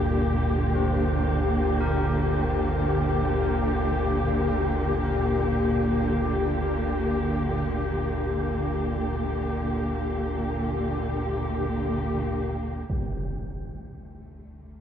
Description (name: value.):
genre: dark ambient drone.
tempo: free time.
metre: none.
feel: none.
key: G minor.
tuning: A4 = 440 Hz.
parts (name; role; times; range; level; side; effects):
dark symphonic cello section; sustained chords; 0.0-14.8 s; Bb2 to G4; -26 LUFS; equal; none.
tubular bells; arpeggios; 0.0-12.9 s; C4 to Bb4; -42 LUFS; left 3 dB; none.
deep rumbling drone; drone; 0.0-14.8 s; G1 to D2; -29 LUFS; equal; built-in reverb, wide subtle chorus.
wind-like tuned noise texture; texture; 0.0-12.9 s; G4; -32 LUFS; left 3 dB; built-in reverb.
impact; percussion; 12.9-13.1 s; none; -32 LUFS; equal; low-pass filter on sfx.
room: wet echo chamber reverb, RT60 2.8 s.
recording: echo-heavy mix, cassette tape.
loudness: -23 LUFS.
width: side -9 dB against mid.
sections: 0.0-12.9 A section; 12.9-14.8 B section.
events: none.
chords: 0.0 Gm; 12.9 Gsus2.